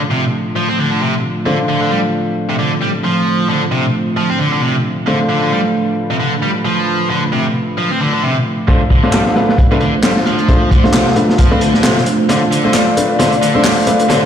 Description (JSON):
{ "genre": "breakbeat, breaks", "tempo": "133 BPM", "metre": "4/4", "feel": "swing 58% on 16ths", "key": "D dorian", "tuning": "A4 = 440 Hz", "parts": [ { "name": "dark analog pad", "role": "sustained chords", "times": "0.0-14.3 s", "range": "A3 to B5", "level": "-19 LUFS", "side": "right 1 dB", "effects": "chorus, sidechain pumping" }, { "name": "warm concert grand piano", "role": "stabs", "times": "0.0-14.2 s", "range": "A3 to C5", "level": "-18 LUFS", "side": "left 1 dB", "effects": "low-pass filter, dub echo" }, { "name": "tight distorted guitar", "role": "riff", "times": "0.1-14.2 s", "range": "C3 to C4", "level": "-17 LUFS", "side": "equal", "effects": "distortion, low-pass filter, dub echo" }, { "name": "crunchy breakbeat drum kit", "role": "drums", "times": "8.7-14.2 s", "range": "hi-hat, kick drum, snare drum", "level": "-14 LUFS", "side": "equal", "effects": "low-pass filter on kick, low-pass filter on hats, low-pass filter on snare, low-pass filter on room" }, { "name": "electronic handclaps", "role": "drums", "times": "9.1-13.7 s", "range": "none", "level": "-23 LUFS", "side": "equal", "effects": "high-pass filter on snare, high-pass filter on room" } ], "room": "light reverb, small room ambience", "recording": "played on a big sound system in a bare room, large studio reverb", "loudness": "-12 LUFS", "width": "side -9 dB against mid", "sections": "0.0-8.7 A section; 8.7-14.3 B section", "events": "filter sweep on analog synth pad 0.0-8.7; build-up 8.7-14.3; filter sweep on drum 8.7-14.3; drum fill 12.3-14.3", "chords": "0.0 Dm7" }